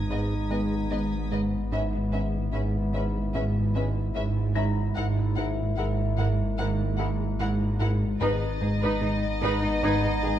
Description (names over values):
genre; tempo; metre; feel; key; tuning
cinematic, suspense film score; 74 BPM; 4/4; straight; G# minor; A4 = 436 Hz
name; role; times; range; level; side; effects
warm French horn section; sustained chords; 0.0-10.4 s; A#3 to E4; -35 LUFS; left 2 dB; none
punchy sub bass; drone; 0.0-10.4 s; G#1; -32 LUFS; left 1 dB; none
dark concert grand piano; texture; 0.0-10.4 s; A#5 to A#6; -41 LUFS; left 6 dB; none
rich symphonic violin section; texture; 0.0-1.3, 8.2-10.4 s; D#6 to A#6; -44 LUFS; left 4 dB; none
rich studio violin section; melody; 0.1-10.4 s; D#5 to F#5; -35 LUFS; left 3 dB; none
rich studio violin section; second line; 0.1-10.3 s; D#4 to B4; -34 LUFS; right 1 dB; none
dark studio viola section; accompaniment; 0.1-10.3 s; B3 to E4; -35 LUFS; equal; none
fat analog bass; riff; 0.1-10.4 s; G#2 to G#3; -32 LUFS; right 2 dB; none
warm studio cello section; bass; 0.1-10.3 s; G#2; -31 LUFS; equal; none
warm studio double bass section; bass; 0.1-10.3 s; G#1; -31 LUFS; right 4 dB; none
timpani; percussion; 8.2-9.4 s; G#2; -35 LUFS; left 2 dB; none
room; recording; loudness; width
moderate scoring stage reverb, RT60 1.8 s; dark, warm production; -24 LUFS; side -11 dB against mid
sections
0.0-10.4 A section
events
none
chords
0.0 G#m; 1.7 C#m7/G#; 5.0 F#7/G# (rootless); 8.2 G#m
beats
0.10 0.91 | 1.72 2.53 3.34 4.15 | 4.96 5.78 6.59 7.40 | 8.21 9.02 9.83